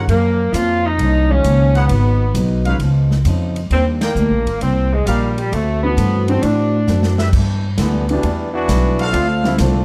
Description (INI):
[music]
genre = jazz, big band swing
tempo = 132 BPM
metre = 4/4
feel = swing 68% on 8ths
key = unclear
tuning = A4 = 440 Hz
[part]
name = warm concert grand piano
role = accompaniment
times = 0.0-2.8, 5.8-9.6 s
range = D3 to F#4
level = -26 LUFS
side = equal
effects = none
[part]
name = warm trumpet section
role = stabs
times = 0.0-9.6 s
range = D4 to G5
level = -27 LUFS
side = equal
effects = none
[part]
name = upright bass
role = bass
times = 0.0-9.8 s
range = G1 to A2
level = -18 LUFS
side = equal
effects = none
[part]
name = warm saxophone section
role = melody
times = 0.1-7.2 s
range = G3 to F4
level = -21 LUFS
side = equal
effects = none
[part]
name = picked acoustic archtop guitar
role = accompaniment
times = 0.1-9.8 s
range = Gb2 to F#4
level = -27 LUFS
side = equal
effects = none
[part]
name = swinging big-band drum kit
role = drums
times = 0.1-9.7 s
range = crash cymbal, hi-hat, kick drum, ride cymbal, snare drum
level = -27 LUFS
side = equal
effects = none
[part]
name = brilliant trombone section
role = second line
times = 7.8-9.8 s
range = D3 to F#4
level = -22 LUFS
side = equal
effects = none
[sound]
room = light reverb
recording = dark, warm production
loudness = -16 LUFS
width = mono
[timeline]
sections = 0.0-7.3 A section; 7.3-9.8 B section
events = band accent 3.9; drum fill 6.9-7.3; trombone section solo 7.3-9.8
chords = 0.1 Gbmaj7; 1.9 Abm7; 2.8 Db9; 3.7 Ebmaj7; 5.5 D7; 7.3 G6; 9.1 Dm7